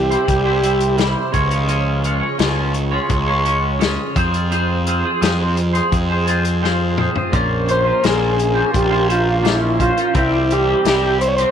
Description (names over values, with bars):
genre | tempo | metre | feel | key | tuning
psychedelic rock | 85 BPM | 4/4 | straight | unclear | A4 = 440 Hz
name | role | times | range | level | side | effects
combo organ | melody | 0.0-1.0, 7.7-11.5 s | E4 to Db5 | -18 LUFS | equal | slapback echo
string machine, violas | sustained chords | 0.0-11.5 s | Db4 to Db6 | -29 LUFS | right 10 dB | ensemble chorus
twangy electric guitar | riff | 0.0-11.5 s | Bb2 to Db5 | -20 LUFS | equal | flanger, double-tracked left and right
fuzz picked electric bass | bass | 0.0-11.4 s | Bb1 to F2 | -20 LUFS | equal | overdrive
vintage drum kit | drums | 0.1-11.5 s | hi-hat, kick drum, snare drum, toms | -22 LUFS | left 3 dB | none
room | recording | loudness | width
light reverb, small room ambience | 1960s-style stereo | -15 LUFS | side -8 dB against mid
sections
0.0-11.5 A section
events
drum fill 6.6-7.3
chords
0.0 C; 1.3 Db; 4.2 Fm; 7.3 Bbmadd9; 10.2 C